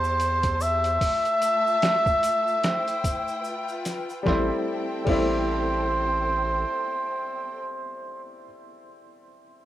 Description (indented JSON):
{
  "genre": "trip hop",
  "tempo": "74 BPM",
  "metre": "4/4",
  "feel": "swing 59% on 16ths",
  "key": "A minor",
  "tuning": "A4 = 442 Hz",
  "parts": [
    { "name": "trumpet with cup mute", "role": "melody", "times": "0.0-8.3 s", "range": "C5 to E5", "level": "-25 LUFS", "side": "equal", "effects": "dub echo" },
    { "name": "clear upright piano", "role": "accompaniment", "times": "0.0-9.7 s", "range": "G3 to E4", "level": "-29 LUFS", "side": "left 1 dB", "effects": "harmonic tremolo, tape echo" },
    { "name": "bright studio string section", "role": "sustained chords", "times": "0.0-7.6 s", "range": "A3 to A5", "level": "-35 LUFS", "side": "left 1 dB", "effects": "vintage 12-bit sampler grit" },
    { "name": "round analog bass", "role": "bass", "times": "0.0-6.7 s", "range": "A1 to E2", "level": "-29 LUFS", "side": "equal", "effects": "none" },
    { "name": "tube shaker", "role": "percussion", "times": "0.0-4.2 s", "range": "none", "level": "-43 LUFS", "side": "left 2 dB", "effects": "none" },
    { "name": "trip hop sampler-style drum kit", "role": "drums", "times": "0.2-5.3 s", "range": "crash cymbal, hi-hat, kick drum, snare drum", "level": "-28 LUFS", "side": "equal", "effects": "none" }
  ],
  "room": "moderate studio reverb, RT60 0.6 s",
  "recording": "rough home demo mix",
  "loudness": "-22 LUFS",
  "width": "side -13 dB against mid",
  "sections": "0.0-4.3 A section; 4.3-7.5 B section",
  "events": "none",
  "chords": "0.0 Am7; 1.0 Fmaj7/A; 2.6 Am7; 3.4 G7; 4.3 Am7"
}